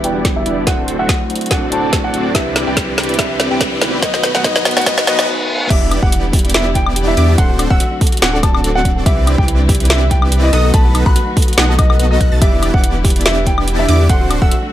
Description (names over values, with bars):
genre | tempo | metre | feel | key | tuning
future bass | 143 BPM | 4/4 | swing 54% on 16ths, half-time | E minor | A4 = 440 Hz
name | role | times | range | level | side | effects
warm baby grand piano | melody | 0.0-14.6 s | D#5 to B5 | -21 LUFS | left 1 dB | sidechain pumping, low-pass filter, digital delay
tine electric piano | accompaniment | 0.0-5.7 s | G3 to F#5 | -23 LUFS | right 1 dB | medium stereo tremolo, sidechain pumping, digital delay
warm studio string section | sustained chords | 0.0-14.7 s | D3 to B4 | -27 LUFS | left 1 dB | sidechain pumping
dense compressed supersaw | riff | 0.0-14.5 s | B3 to A5 | -21 LUFS | equal | sidechain pumping, low-pass filter
saturated sub bass | bass | 0.0-14.5 s | D1 to E2 | -17 LUFS | equal | tube saturation, sidechain pumping
trap drum kit | drums | 0.0-14.6 s | crash cymbal, hi-hat, snare drum, woodblock | -17 LUFS | equal | none
riser, reverse cymbal and impact | sound effects | 1.9-7.4 s | none | -24 LUFS | left 2 dB | none
electronic kick drum | drums | 0.2-14.5 s | none | -15 LUFS | equal | none
thumb-piano-like synth pluck | arpeggios | 5.7-14.7 s | D4 to D#5 | -25 LUFS | right 4 dB | chorus, sidechain pumping, digital delay
wide unison pluck | arpeggios | 5.7-14.5 s | B5 to A6 | -28 LUFS | equal | cassette tape, sidechain pumping, digital delay
room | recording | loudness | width
light reverb, digital ambience | high-pass filter | -11 LUFS | side -13 dB against mid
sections
0.0-5.7 A section; 5.7-14.7 B section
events
build-up 0.0-5.7; drum fill 0.0-5.3; filter sweep on supersaw synth 0.0-5.7; filter sweep on grand piano 0.0-5.7; filter sweep 0.0-5.7; riser 1.9-5.3; reverse cymbal 4.9-5.7; break 5.3-5.7; drop 5.7-14.7; impact 5.7-7.4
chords
0.0 Em7; 0.7 D7; 2.3 Cmaj9; 3.8 B7; 5.7 Em7; 7.4 D7; 9.1 Cmaj9; 10.5 B7; 12.4 Em7; 14.1 D7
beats
0.25 | 0.67 1.09 1.51 1.93 | 2.35 2.77 3.19 3.61 | 4.03 4.45 4.87 5.28 | 5.70 6.12 6.54 6.96 | 7.38 7.80 8.22 8.64 | 9.06 9.48 9.90 10.32 | 10.74 11.16 11.58 12.00 | 12.42 12.84 13.26 13.68 | 14.10 14.52